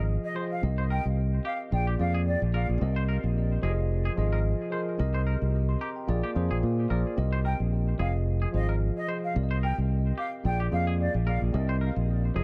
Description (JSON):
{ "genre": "afrobeats", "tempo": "110 BPM", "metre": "4/4", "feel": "swing 55% on 16ths", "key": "C minor", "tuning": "A4 = 440 Hz", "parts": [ { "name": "bright tine electric piano", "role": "accompaniment", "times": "0.0-12.4 s", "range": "F3 to C6", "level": "-36 LUFS", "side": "equal", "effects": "dub echo" }, { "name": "twangy electric guitar", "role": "riff", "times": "0.0-12.4 s", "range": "G4 to C5", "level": "-42 LUFS", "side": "equal", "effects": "dub echo" }, { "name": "fingered electric bass", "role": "bass", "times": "0.0-12.4 s", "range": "F1 to Bb2", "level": "-28 LUFS", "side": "equal", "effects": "none" }, { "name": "concert flute", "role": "melody", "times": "0.2-2.7, 7.5-11.4 s", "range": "D5 to G5", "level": "-38 LUFS", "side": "equal", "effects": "dub echo" } ], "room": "digital ambience", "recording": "echo-heavy mix", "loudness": "-28 LUFS", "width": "mono", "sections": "0.0-12.4 A section", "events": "none", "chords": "0.0 Fm7; 0.6 Cm7; 1.7 Bb7; 2.8 Cm7; 3.6 Fm7; 5.0 Cm7; 6.1 Bb7; 7.2 Cm7; 8.0 Fm7; 9.4 Cm7; 10.4 Bb7; 11.5 Cm7", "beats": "0.08 | 0.63 1.18 1.72 2.27 | 2.81 3.36 3.90 4.45 | 4.99 5.54 6.08 6.63 | 7.17 7.72 8.27 8.81 | 9.36 9.90 10.45 10.99 | 11.54 12.08" }